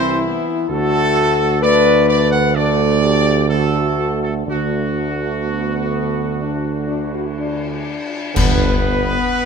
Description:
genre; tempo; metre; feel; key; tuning
classical, ceremonial fanfare; 63 BPM; 4/4; straight; unclear; A4 = 440 Hz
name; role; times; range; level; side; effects
mellow trumpet section; melody; 0.0-9.5 s; F#4 to F#5; -20 LUFS; right 2 dB; none
bright trombone section; sustained chords; 0.0-8.7 s; D3 to C4; -25 LUFS; right 5 dB; none
clear French horn section; sustained chords; 0.0-9.5 s; B3 to B4; -20 LUFS; left 8 dB; none
warm tuba; bass; 0.0-9.2 s; G1 to D2; -20 LUFS; right 6 dB; none
cymbal swell, clash cymbals and concert bass drum; percussion; 4.5-9.5 s; none; -21 LUFS; left 2 dB; none
room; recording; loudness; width
moderate scoring stage reverb, RT60 2.0 s; none; -15 LUFS; side -6 dB against mid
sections
0.0-8.4 A section; 8.4-9.5 B section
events
band accent 8.4-9.3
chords
0.0 C; 0.7 D; 8.4 G

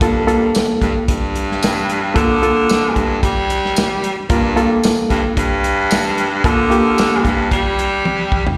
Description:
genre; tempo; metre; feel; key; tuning
straight-eighth soul blues; 112 BPM; 4/4; swing 54% on 16ths; G minor; A4 = 440 Hz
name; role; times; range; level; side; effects
barky reed electric piano; accompaniment; 0.0-7.5 s; Bb3 to Bb4; -19 LUFS; equal; overdrive, fast tremolo, slapback echo
breathy baritone saxophone; bass; 0.0-8.5 s; G2 to G3; -20 LUFS; equal; none
warm soul drum kit; drums; 0.0-8.6 s; hi-hat, kick drum, snare drum, tambourine, toms; -21 LUFS; equal; none
room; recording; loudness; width
light reverb, small room reverb; live gig heard through the venue's PA, recital hall reverb; -16 LUFS; mono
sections
0.0-8.6 A section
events
drum fill 8.1-8.6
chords
0.0 Gm7

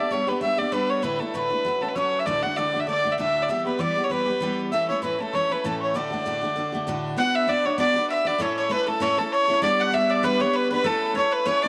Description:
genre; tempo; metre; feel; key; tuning
celtic folk, Celtic reel; 196 BPM; 4/4; swing 54% on 8ths; D major; A4 = 445 Hz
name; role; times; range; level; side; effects
rich fiddle; melody; 0.0-11.7 s; A4 to F#5; -25 LUFS; equal; none
mellow hollow wooden whistle; second line; 0.0-11.7 s; A5 to F#6; -36 LUFS; equal; none
picked steel-string acoustic guitar; accompaniment; 0.0-11.7 s; D2 to B4; -30 LUFS; equal; none
mandolin; second line; 7.2-11.7 s; A4 to F#5; -34 LUFS; equal; none
room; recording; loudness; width
wet spring reverb, RT60 2.6 s; none; -24 LUFS; mono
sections
0.0-7.2 A section; 7.2-11.7 B section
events
none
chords
0.0 G; 1.0 Asus4; 1.6 F#m; 2.3 D; 3.5 Em; 4.7 A; 6.0 D; 7.2 Bm; 8.4 A; 9.6 G; 10.9 Aadd9

